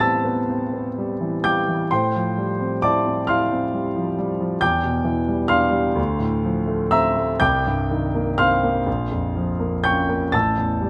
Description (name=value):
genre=classical, impressionist solo piano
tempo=40-45 BPM (dotted quarters)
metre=6/8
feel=rubato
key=unclear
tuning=A4 = 440 Hz
part: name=clear grand piano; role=solo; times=0.0-10.9 s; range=A1 to B6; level=-21 LUFS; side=equal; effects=none
room=light reverb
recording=close, detailed microphones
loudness=-21 LUFS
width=mono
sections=0.0-10.9 A section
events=none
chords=0.0 Am9; 1.9 Fmaj9/A; 4.6 Em7; 6.0 Dm7; 7.4 Cm7; 8.9 Bbm; 10.3 A7(no3)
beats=0.46 | 1.90 3.26 | 4.61 5.98 | 7.41 8.87 | 10.34